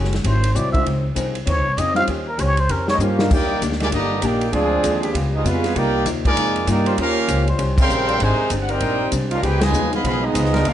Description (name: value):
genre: jazz, big band swing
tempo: 196 BPM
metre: 4/4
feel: swing 61% on 8ths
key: Eb major from 3.3 s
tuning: A4 = 440 Hz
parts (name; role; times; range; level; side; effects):
- archtop guitar, miked and amplified; accompaniment; 0.0-10.7 s; Ab2 to C5; -27 LUFS; left 4 dB; none
- upright bass; bass; 0.0-10.7 s; Gb1 to G2; -22 LUFS; equal; none
- swinging big-band drum kit; drums; 0.0-10.7 s; crash cymbal, hi-hat, kick drum, ride cymbal, snare drum; -25 LUFS; equal; none
- trumpet with plunger mute; melody; 0.3-3.0 s; Bb4 to F5; -22 LUFS; equal; plate reverb
- warm baby grand piano; accompaniment; 0.7-3.3 s; G3 to C5; -26 LUFS; left 1 dB; none
- warm trumpet section; melody; 2.9-10.7 s; Cb4 to C6; -23 LUFS; equal; plate reverb
- brilliant trombone section; second line; 2.9-10.7 s; Bb2 to G4; -24 LUFS; right 2 dB; none
- mellow trombone section; sustained chords; 3.8-10.7 s; Eb3 to D5; -28 LUFS; left 1 dB; none
room: moderate large studio reverb, RT60 1.1 s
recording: nothing above 10.8 kHz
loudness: -17 LUFS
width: side -11 dB against mid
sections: 0.0-3.3 A section; 3.3-10.7 B section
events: muted trumpet solo 0.0-3.3; drum fill 3.0-3.3; band accent 7.7, 9.6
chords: 0.2 Ab7b13; 0.9 Dbmaj9; 2.1 Eb13; 3.3 Ebmaj7; 4.5 Dm7b5; 5.1 Db7#11; 5.8 Cm11; 7.0 Eb13; 8.2 Abmaj9#11; 9.4 Db9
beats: 0.24 0.55 | 0.86 1.16 1.47 1.77 | 2.08 2.38 2.69 3.00 | 3.30 3.61 3.92 4.22 | 4.53 4.83 5.14 5.44 | 5.75 6.06 6.36 6.67 | 6.97 7.28 7.59 7.89 | 8.20 8.50 8.81 9.12 | 9.42 9.73 10.03 10.34 | 10.64